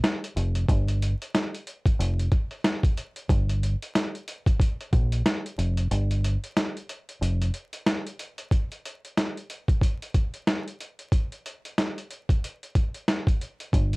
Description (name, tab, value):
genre	hip hop, boom-bap hip-hop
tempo	92 BPM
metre	4/4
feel	swing 59% on 16ths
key	unclear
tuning	A4 = 442 Hz
part	boom bap sampler-style drum kit	drums	0.0-14.0 s	hi-hat, kick drum, snare drum	-24 LUFS	equal	none
part	deep dub fingered electric bass	bass	0.4-7.5, 13.7-14.0 s	F1 to Bb1	-24 LUFS	equal	none
room	little or no reverb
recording	worn, warbling old tape, cassette tape, vinyl crackle, warbly pitch drift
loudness	-24 LUFS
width	side -27 dB against mid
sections	0.0-8.5 A section; 8.5-14.0 B section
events	break 5.9-8.5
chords	none